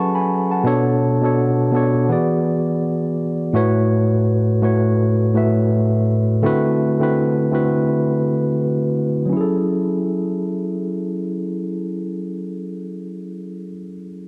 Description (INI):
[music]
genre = R&B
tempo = 83 BPM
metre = 4/4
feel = swing 59% on 16ths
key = F# minor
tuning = A4 = 438 Hz
[part]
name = tine electric piano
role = solo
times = 0.0-14.3 s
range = A2 to C#6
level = -19 LUFS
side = equal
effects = cassette tape
[sound]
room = light reverb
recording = home recording on cassette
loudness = -19 LUFS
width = mono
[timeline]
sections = 0.0-9.3 A section; 9.3-12.2 B section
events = none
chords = 0.0 F#m9; 0.6 Bm9; 2.1 E9; 3.5 A6; 6.4 D13; 9.3 F#m9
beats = | 0.64 1.36 2.08 2.81 | 3.53 4.25 4.98 5.70 | 6.42 7.15 7.87 8.59 | 9.31 10.04 10.76 11.48